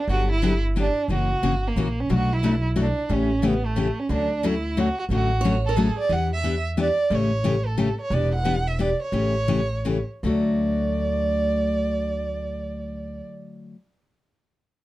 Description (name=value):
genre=acoustic string swing (jazz manouche)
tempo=153-180 BPM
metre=3/4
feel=swing 59% on 8ths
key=D major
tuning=A4 = 440 Hz
part: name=warm violin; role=melody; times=0.0-13.2 s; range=A3 to F#5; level=-26 LUFS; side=right 3 dB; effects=none
part: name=picked steel-string acoustic guitar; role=accompaniment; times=0.1-13.8 s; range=B2 to G4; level=-25 LUFS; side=left 3 dB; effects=none
part: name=upright bass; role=bass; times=0.1-13.2 s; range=E1 to E2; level=-26 LUFS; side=equal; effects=none
part: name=picked steel-string acoustic guitar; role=second line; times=5.4-6.1 s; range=G#4 to C#5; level=-29 LUFS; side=right 5 dB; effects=none
room=light reverb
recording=dark, warm production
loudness=-21 LUFS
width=side -16 dB against mid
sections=0.0-6.1 A section; 6.1-10.2 B section; 10.2-12.6 C section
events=slowing down 8.1-10.2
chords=0.1 Gmaj7; 1.1 F#7; 2.1 Bm7; 3.1 A7; 4.1 Dmaj7; 6.1 Em7; 7.1 A7; 8.1 Em7; 9.1 A7; 10.2 D